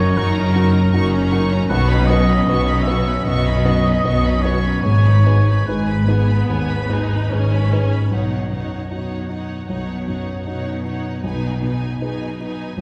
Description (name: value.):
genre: cinematic, emotional film score for orchestra.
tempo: 75 BPM.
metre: 4/4.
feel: uneven beats, rubato.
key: B major.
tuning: A4 = 440 Hz.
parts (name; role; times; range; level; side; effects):
rich symphonic violin section; melody; 0.0-12.8 s; F#5 to C#6; -34 LUFS; equal; none.
rich symphonic violin section; second line; 0.0-12.8 s; D#4 to C#5; -36 LUFS; equal; none.
warm oboe; second line; 0.0-7.7 s; A#4 to E5; -26 LUFS; equal; none.
felt-muted upright piano; accompaniment; 0.0-12.8 s; B1 to C#5; -26 LUFS; equal; none.
warm studio viola section; accompaniment; 0.0-12.8 s; G#3 to D#4; -30 LUFS; equal; none.
rich symphonic cello section; bass; 0.0-12.8 s; F#2 to B2; -24 LUFS; equal; none.
warm symphonic double bass section; bass; 0.0-8.0 s; F#1 to B1; -21 LUFS; equal; none.
room: wet scoring stage reverb, RT60 1.6 s.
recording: heard from further back in the room.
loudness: -18 LUFS.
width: mono.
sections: 0.0-8.1 A section; 8.1-12.8 B section.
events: none.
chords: 0.0 D#m7/F#; 1.7 Badd9; 4.8 G#m; 8.1 Badd9; 11.2 G#m/B.